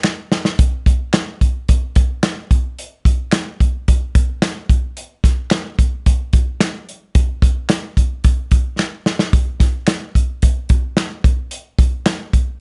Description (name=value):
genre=soul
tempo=110 BPM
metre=4/4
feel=straight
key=none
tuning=none
part: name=natural country drum kit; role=drums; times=0.0-12.5 s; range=hi-hat, kick drum, snare drum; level=-17 LUFS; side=equal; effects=none
part: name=finger snaps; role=percussion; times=0.0-12.2 s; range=none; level=-27 LUFS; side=equal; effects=none
room=little or no reverb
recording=nothing above 11.0 kHz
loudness=-17 LUFS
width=mono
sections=0.0-9.3 A section; 9.3-12.6 B section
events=drum fill 0.0-0.6, 8.8-9.3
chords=none